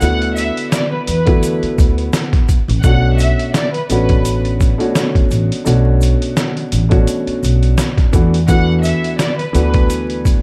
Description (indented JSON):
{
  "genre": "hip hop, boom-bap hip-hop",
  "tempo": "85 BPM",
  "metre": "4/4",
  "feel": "swing 56% on 16ths",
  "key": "B minor",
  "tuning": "A4 = 440 Hz",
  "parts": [
    { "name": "warm studio violin section", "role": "melody", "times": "0.0-10.1 s", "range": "B4 to F#5", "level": "-24 LUFS", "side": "equal", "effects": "high-pass filter, low-pass filter, tape echo" },
    { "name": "dark concert grand piano", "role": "accompaniment", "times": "0.0-10.4 s", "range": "B2 to F#4", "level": "-21 LUFS", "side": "equal", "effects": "cassette tape, high-pass filter, low-pass filter" },
    { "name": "upright bass", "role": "bass", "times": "0.0-10.4 s", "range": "A1 to E2", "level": "-18 LUFS", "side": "equal", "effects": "none" },
    { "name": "trip hop sampler-style drum kit", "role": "drums", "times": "0.0-10.4 s", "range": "hi-hat, kick drum, snare drum", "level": "-18 LUFS", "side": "equal", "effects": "none" },
    { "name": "egg shaker", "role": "percussion", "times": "0.0-10.4 s", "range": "none", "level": "-34 LUFS", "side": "equal", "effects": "none" }
  ],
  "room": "small room ambience",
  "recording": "echo-heavy mix, vinyl crackle",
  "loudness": "-15 LUFS",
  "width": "mono",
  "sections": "0.0-10.4 A section",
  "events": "none",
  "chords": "0.0 D6; 2.8 Bm9; 8.1 E9sus4",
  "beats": "| 0.02 0.72 1.43 2.13 | 2.84 3.55 4.25 4.96 | 5.66 6.37 7.08 7.78 | 8.49 9.19 9.90"
}